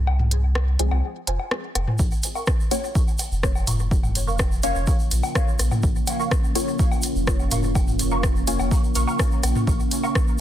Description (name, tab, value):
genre	dub techno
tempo	125 BPM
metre	4/4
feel	straight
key	unclear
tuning	A4 = 440 Hz
part	pure sine sub bass	bass	0.0-9.8 s	F1 to C2	-23 LUFS	equal	sidechain pumping
part	electronic woodblock and toms	percussion	0.1-10.1 s	none	-29 LUFS	left 2 dB	sidechain pumping on toms, sidechain pumping on perc, dub echo
part	deep house drum kit	drums	0.3-10.3 s	hi-hat, rim click	-27 LUFS	equal	soft clipping on snare, dub echo
part	filtered dub chord stab	stabs	0.8-8.6 s	F3 to Db5	-30 LUFS	left 3 dB	phaser, sidechain pumping, dub echo
part	filtered dub chord stab	riff	1.3-10.1 s	F4 to Db6	-32 LUFS	right 4 dB	phaser, ensemble chorus, sidechain pumping, dub echo
part	deep dark ambient pad	sustained chords	3.8-10.4 s	Bb3 to F4	-28 LUFS	equal	chorus, built-in reverb, sidechain pumping
part	electronic kick drum	drums	2.0-10.3 s	none	-22 LUFS	equal	none
part	tube shaker	percussion	2.0-10.4 s	none	-33 LUFS	right 3 dB	none
room	digital ambience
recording	dense, heavily limited modern master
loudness	-19 LUFS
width	side -11 dB against mid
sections	0.0-10.4 A section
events	filter sweep on synth stab 0.0-10.4; break 0.1-2.0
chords	0.0 Fm; 2.0 Bbm